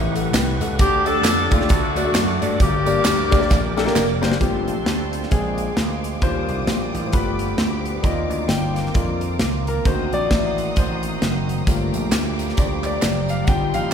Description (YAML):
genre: uptempo gospel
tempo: 132 BPM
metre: 4/4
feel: swing 60% on 8ths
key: G minor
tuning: A4 = 438 Hz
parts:
  - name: warm concert grand piano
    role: accompaniment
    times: 0.0-13.9 s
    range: G2 to G5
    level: -24 LUFS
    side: left 3 dB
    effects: none
  - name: bright tonewheel organ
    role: sustained chords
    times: 0.0-13.9 s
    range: Eb3 to D6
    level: -30 LUFS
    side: right 3 dB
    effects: fast rotary speaker, overdrive, chorus vibrato
  - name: vintage slap bass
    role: bass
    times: 0.0-13.9 s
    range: F1 to G2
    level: -25 LUFS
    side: equal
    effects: none
  - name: modern studio drum kit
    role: drums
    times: 0.2-13.8 s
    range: hi-hat, kick drum, snare drum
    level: -22 LUFS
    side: equal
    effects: none
  - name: tambourine and handclaps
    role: percussion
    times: 0.2-4.3, 11.7-13.8 s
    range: none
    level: -31 LUFS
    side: right 4 dB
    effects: none
  - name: clear saxophone section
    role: melody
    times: 0.8-3.9 s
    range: A3 to A4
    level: -22 LUFS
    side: left 2 dB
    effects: none
  - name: clear studio string section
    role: sustained chords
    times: 4.4-13.9 s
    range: Eb5 to Eb6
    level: -32 LUFS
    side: right 1 dB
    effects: none
room: moderate church reverb, RT60 3.5 s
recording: recorded in a church or concert hall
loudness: -18 LUFS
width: side -7 dB against mid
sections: 0.0-4.4 A section; 4.4-13.9 B section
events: drum fill 3.5-4.4; grand piano solo 4.4-13.9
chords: 0.0 A13; 0.8 Dsus4; 1.7 D; 2.6 Gm; 4.4 Gm11; 5.3 Bb7; 6.2 Ebmaj9; 7.1 G7; 8.0 Cm11; 9.9 D7b9b13; 11.7 Gm7